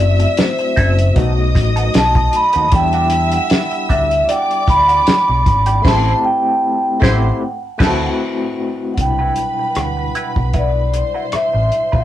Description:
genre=lush 1970s-style soul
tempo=77 BPM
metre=4/4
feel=swing 54% on 16ths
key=unclear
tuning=A4 = 438 Hz
part: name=vibraphone with soft mallets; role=melody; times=0.0-12.0 s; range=C5 to B5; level=-17 LUFS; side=equal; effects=analog delay
part: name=warm studio violin section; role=second line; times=0.0-12.0 s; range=A4 to E6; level=-24 LUFS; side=right 1 dB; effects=none
part: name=overdriven tine electric piano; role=accompaniment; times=0.0-12.0 s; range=B2 to B4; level=-24 LUFS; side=left 3 dB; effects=medium tremolo
part: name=semi-hollow electric guitar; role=riff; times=0.0-12.0 s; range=G3 to C5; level=-25 LUFS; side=right 2 dB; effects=wah
part: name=deep dub fingered electric bass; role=bass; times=0.0-12.0 s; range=F#1 to E2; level=-17 LUFS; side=equal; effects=none
part: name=damped 70s drum kit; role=drums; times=0.2-12.0 s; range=crash cymbal, hi-hat, kick drum, rim click, snare drum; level=-17 LUFS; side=equal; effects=none
part: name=tambourine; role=percussion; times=0.4-5.3 s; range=none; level=-34 LUFS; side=right 6 dB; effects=none
room=moderate small room reverb, RT60 0.5 s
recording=rough rehearsal-room recording, cassette tape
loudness=-13 LUFS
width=side -12 dB against mid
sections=0.0-9.0 A section; 9.0-12.0 B section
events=band accent 5.9-9.0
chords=0.0 F#m7b5; 1.2 B7; 2.7 Em9; 5.9 Am7; 7.4 D13; 9.0 Cmaj9#11

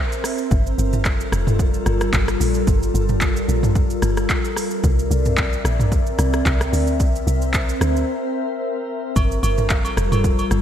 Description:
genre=amapiano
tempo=111 BPM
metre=4/4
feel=swing 55% on 16ths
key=G dorian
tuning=A4 = 439 Hz
part: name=glassy FM pad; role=sustained chords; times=0.0-10.6 s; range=G3 to E5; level=-23 LUFS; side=left 1 dB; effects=ensemble chorus, built-in reverb, sidechain pumping
part: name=deep house drum kit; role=drums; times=0.1-10.6 s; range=handclaps, hi-hat, kick drum, rim click, shaker, toms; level=-20 LUFS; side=equal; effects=none
part: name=deep log drum bass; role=bass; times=0.5-10.6 s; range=F1 to D2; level=-21 LUFS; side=equal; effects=none
part: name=agogo bells and woodblock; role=percussion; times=9.2-10.5 s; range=none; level=-28 LUFS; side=right 1 dB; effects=none
room=moderate lush hall reverb, RT60 2.1 s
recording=dreamy mix soaked in reverb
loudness=-17 LUFS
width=side -10 dB against mid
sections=0.0-10.6 A section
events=break 8.1-9.2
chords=0.0 C7; 0.5 Gm9; 4.6 C9; 9.2 Gm9

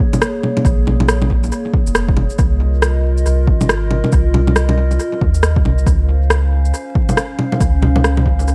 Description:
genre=future garage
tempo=138 BPM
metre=4/4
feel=swing 61% on 16ths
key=Bb minor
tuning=A4 = 440 Hz
part: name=warbly tape-like pad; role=sustained chords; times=0.0-8.5 s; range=Bb3 to F5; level=-25 LUFS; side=equal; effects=chorus, built-in reverb, sidechain pumping
part: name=electronic bongos, shaker and rim click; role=drums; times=0.1-8.5 s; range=none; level=-20 LUFS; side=equal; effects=overdrive, tape echo
part: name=soft dub sub bass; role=bass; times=0.6-8.5 s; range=F1 to Eb2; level=-17 LUFS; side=equal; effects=sidechain pumping
part: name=electronic kick drum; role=drums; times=0.6-8.4 s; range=none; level=-18 LUFS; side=equal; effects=overdrive
room=light reverb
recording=echo-heavy mix, vinyl crackle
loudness=-15 LUFS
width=mono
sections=0.0-8.5 A section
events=none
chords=0.0 Bbm7; 2.4 F7sus4; 5.9 Dbmaj7

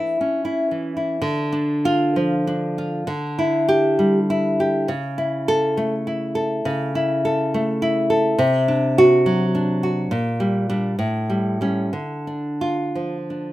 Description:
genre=romantic piece for solo classical guitar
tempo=67 BPM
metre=4/4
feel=uneven beats, rubato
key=D minor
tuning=A4 = 439 Hz
part: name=nylon-string guitar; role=solo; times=0.0-13.5 s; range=A2 to A4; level=-18 LUFS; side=equal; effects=none
room=moderate studio reverb, RT60 0.6 s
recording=rough home demo mix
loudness=-18 LUFS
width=side -15 dB against mid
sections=0.0-1.2 A section; 1.2-13.5 B section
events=none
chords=0.0 A; 1.2 Dm; 3.1 Dsus24; 4.9 A/C#; 8.4 D7/C; 10.1 Gm/Bb; 11.0 A7; 11.9 Dm

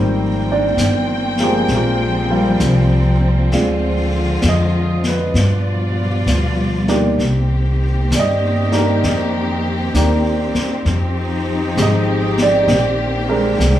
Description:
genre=jazz ballad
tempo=66 BPM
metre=4/4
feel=swing 66% on 8ths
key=unclear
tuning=A4 = 440 Hz
part: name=warm grand piano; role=accompaniment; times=0.0-13.8 s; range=Eb3 to Eb5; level=-18 LUFS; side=right 1 dB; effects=none
part: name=warm symphonic string section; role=sustained chords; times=0.0-13.8 s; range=B2 to G5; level=-20 LUFS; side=left 1 dB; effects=none
part: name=upright bass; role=bass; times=0.0-13.8 s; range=G1 to G2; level=-18 LUFS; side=equal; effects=none
part: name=vintage brush drum kit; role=drums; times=0.8-13.8 s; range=brushed snare drum, hi-hat, snare drum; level=-25 LUFS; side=left 2 dB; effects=none
room=light reverb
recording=studio reverb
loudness=-14 LUFS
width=side -12 dB against mid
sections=0.0-13.8 A section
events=none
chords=0.0 Abmaj13; 3.5 Dm7b5; 5.3 G7b13; 7.2 Cm9; 10.9 Fm9; 12.7 Bb13

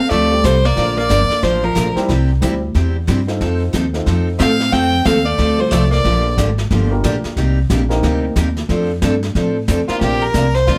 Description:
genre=country, western swing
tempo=182 BPM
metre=4/4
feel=swing 62% on 8ths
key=Bb major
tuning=A4 = 440 Hz
part: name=clear fiddle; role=melody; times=0.0-2.0, 4.4-6.3, 9.9-10.8 s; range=F4 to G5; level=-20 LUFS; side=equal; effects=plate reverb
part: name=archtop guitar, miked and amplified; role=second line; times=0.0-2.0, 4.4-6.3 s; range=F3 to C4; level=-22 LUFS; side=equal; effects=none
part: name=picked steel-string acoustic guitar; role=accompaniment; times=0.1-10.8 s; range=C3 to Bb4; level=-23 LUFS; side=equal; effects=none
part: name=upright bass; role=bass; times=0.1-10.8 s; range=G1 to A2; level=-20 LUFS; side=equal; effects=none
part: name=jazz brush drum kit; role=drums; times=0.1-10.8 s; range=brushed snare drum, hi-hat, kick drum, snare drum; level=-27 LUFS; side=equal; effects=none
part: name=dark upright piano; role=accompaniment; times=0.3-10.2 s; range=F3 to C5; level=-26 LUFS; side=equal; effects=none
room=light reverb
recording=none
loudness=-16 LUFS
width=mono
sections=0.0-10.0 A section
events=none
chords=0.0 Fadd9; 0.8 Bb; 2.1 C; 3.4 F7; 4.7 F; 6.0 Bb6; 7.4 Cm7; 8.7 F6; 10.0 Bbadd9

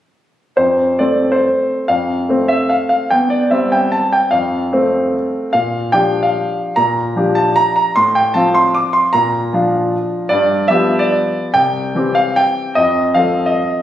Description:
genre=classical, piano waltz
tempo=132-162 BPM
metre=3/4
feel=rubato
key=F major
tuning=A4 = 442 Hz
part: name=clear concert grand piano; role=solo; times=0.6-13.8 s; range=C2 to D6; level=-13 LUFS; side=equal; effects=none
room=light reverb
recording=recorded on a phone in the room, studio reverb, compression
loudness=-13 LUFS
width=side -12 dB against mid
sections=0.6-13.8 A section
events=none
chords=0.6 F; 3.1 C/E; 4.3 F; 5.5 Bb6; 8.0 F/A; 9.1 Bb; 10.3 G7; 11.5 C; 12.8 F7

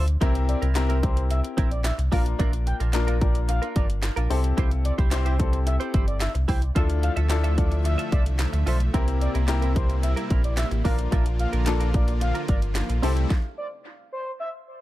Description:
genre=dance-pop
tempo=110 BPM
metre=4/4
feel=straight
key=unclear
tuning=A4 = 440 Hz
part: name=expressive synth lead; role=melody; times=0.0-14.5 s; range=C5 to G5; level=-35 LUFS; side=equal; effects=chorus, dub echo
part: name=direct-recorded clean electric guitar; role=riff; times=0.0-13.2 s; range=C4 to E5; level=-33 LUFS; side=right 5 dB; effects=analog chorus
part: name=sub bass with octave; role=bass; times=0.0-13.3 s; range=G1 to D2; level=-23 LUFS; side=equal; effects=sidechain pumping
part: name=house drum kit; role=drums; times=0.1-13.4 s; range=handclaps, hi-hat, kick drum, snare drum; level=-25 LUFS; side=equal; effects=none
part: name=clear baby grand piano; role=accompaniment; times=0.2-13.3 s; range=Bb3 to C5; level=-31 LUFS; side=left 6 dB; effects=sidechain pumping
part: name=soft supersaw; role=sustained chords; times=6.8-13.3 s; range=C3 to E5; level=-33 LUFS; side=equal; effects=sidechain pumping
room=little or no reverb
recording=echo-heavy mix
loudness=-21 LUFS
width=side -16 dB against mid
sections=0.0-14.8 A section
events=stop 13.3-14.8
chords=0.2 C7; 2.1 Bb; 4.3 Am7/C; 6.8 Dmadd9; 8.9 C7; 10.8 Bb; 13.0 Am7/C

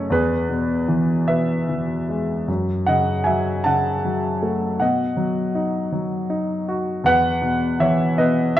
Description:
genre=classical, lyrical solo piano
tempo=50-54 BPM (dotted quarters)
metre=6/8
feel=rubato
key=unclear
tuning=A4 = 441 Hz
part: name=clear grand piano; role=solo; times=0.0-8.6 s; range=E2 to A5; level=-18 LUFS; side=equal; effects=none
room=wet recital hall reverb, RT60 1.4 s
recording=dark, warm production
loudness=-18 LUFS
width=side -12 dB against mid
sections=0.0-8.6 A section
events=none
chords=0.1 E; 2.5 F#m; 4.8 B; 7.0 E5

